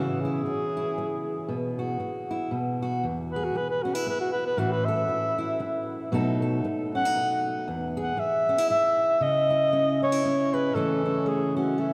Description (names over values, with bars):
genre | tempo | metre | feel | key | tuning
acoustic folk duo or small band | 117 BPM | 3/4 | swing 58% on 8ths | E major | A4 = 440 Hz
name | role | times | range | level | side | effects
mellow alto saxophone | melody | 0.0-11.9 s | F#4 to F#5 | -28 LUFS | equal | none
fingerpicked steel-string acoustic guitar | accompaniment | 0.0-11.9 s | E2 to A4 | -30 LUFS | equal | none
room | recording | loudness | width
wet cathedral reverb, RT60 6.2 s | in a vast, echoing space | -26 LUFS | mono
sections
0.0-9.2 A section; 9.2-11.9 B section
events
alto saxophone solo 0.0-9.2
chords
0.0 C#m; 1.5 Bsus4; 2.5 B5; 3.0 E; 4.6 A; 6.1 B7; 7.7 E; 9.2 C#m; 10.8 A/C#